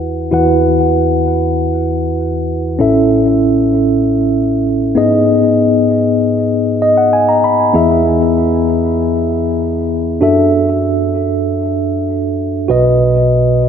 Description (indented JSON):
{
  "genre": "pop",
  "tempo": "97 BPM",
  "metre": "4/4",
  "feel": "straight",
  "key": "unclear",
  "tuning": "A4 = 441 Hz",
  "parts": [
    { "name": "mellow tine electric piano", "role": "solo", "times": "0.0-13.7 s", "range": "A1 to B5", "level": "-11 LUFS", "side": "equal", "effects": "slow stereo tremolo, ping-pong delay" }
  ],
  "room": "wet plate reverb, RT60 2.8 s",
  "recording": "dreamy mix soaked in reverb",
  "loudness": "-11 LUFS",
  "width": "side -7 dB against mid",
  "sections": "0.0-2.8 A section; 2.8-12.7 B section",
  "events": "tine electric piano fill 6.5-7.7",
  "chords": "0.0 Esus2; 2.8 A; 5.0 G#m; 7.7 E; 10.2 Dadd9/F#; 12.7 B",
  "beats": "| 0.32 0.94 1.56 2.18 | 2.80 3.42 4.04 4.65 | 5.27 5.89 6.51 7.13 | 7.75 8.37 8.98 9.60 | 10.22 10.84 11.46 12.08 | 12.70 13.31"
}